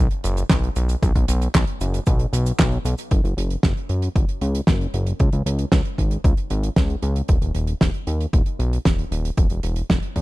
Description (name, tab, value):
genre	italo disco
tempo	115 BPM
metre	4/4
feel	straight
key	unclear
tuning	A4 = 440 Hz
part	fat analog bass	bass	0.0-10.2 s	D#1 to F#2	-22 LUFS	equal	tape echo
part	damped 70s drum kit	drums	0.1-10.2 s	cabasa, handclaps, hi-hat, snare drum	-23 LUFS	right 1 dB	small room reverb
part	electronic kick drum	drums	0.5-10.2 s	none	-20 LUFS	equal	small room reverb
room	little or no reverb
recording	dry, close 1970s-style studio recording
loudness	-18 LUFS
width	side -19 dB against mid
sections	0.0-3.1 A section; 3.1-10.2 B section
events	none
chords	none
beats	0.50 | 1.03 1.55 2.07 2.59 | 3.11 3.63 4.16 4.68 | 5.20 5.72 6.24 6.76 | 7.29 7.81 8.33 8.85 | 9.37 9.89